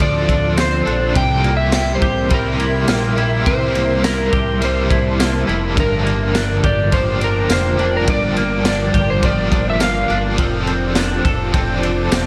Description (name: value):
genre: dream pop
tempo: 104 BPM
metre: 4/4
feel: straight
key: unclear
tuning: A4 = 440 Hz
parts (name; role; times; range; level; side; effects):
- electric slide guitar; melody; 0.0-10.2 s; Bb4 to G5; -24 LUFS; equal; delay
- crunchy overdriven guitar; accompaniment; 0.0-12.3 s; G2 to A4; -25 LUFS; equal; tremolo, ensemble chorus
- ethereal airy pad; sustained chords; 0.0-12.3 s; F4 to D6; -29 LUFS; equal; ensemble chorus, built-in reverb
- semi-hollow electric guitar; arpeggios; 0.0-12.3 s; G2 to A4; -25 LUFS; equal; lush chorus, delay
- fat analog bass; bass; 0.0-12.3 s; E1 to D2; -24 LUFS; equal; none
- raw garage drum kit; drums; 0.0-12.3 s; kick drum, ride cymbal, snare drum, tambourine; -23 LUFS; equal; none
- glassy synth bell; texture; 1.7-3.5 s; G5; -33 LUFS; equal; chorus, delay
room: light reverb, small room ambience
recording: none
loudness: -17 LUFS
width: mono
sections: 0.0-5.8 A section; 5.8-12.3 B section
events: none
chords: 0.0 Dm7; 1.2 C7; 5.8 Gm7; 10.4 F6